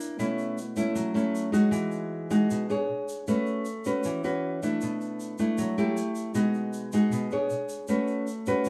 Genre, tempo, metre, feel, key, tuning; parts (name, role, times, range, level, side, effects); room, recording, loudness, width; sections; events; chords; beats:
bossa nova; 156 BPM; 4/4; straight; A4 = 444 Hz
nylon-string guitar; accompaniment; 0.0-8.7 s; B2 to C#5; -28 LUFS; equal
egg shaker; percussion; 0.0-8.7 s; -49 LUFS; equal
light reverb; small room ambience; -28 LUFS; mono
0.0-8.7 A section
0.2 B9sus4; 1.7 Emaj9; 2.9 C#5; 3.3 A69; 4.8 Bm7; 6.0 Emadd11/A; 6.4 B69; 7.5 C#5; 7.9 A69
| 0.19 0.58 0.96 1.35 | 1.74 2.12 2.50 2.89 | 3.27 3.66 4.04 4.43 | 4.81 5.20 5.58 5.97 | 6.35 6.74 7.12 7.51 | 7.89 8.28 8.66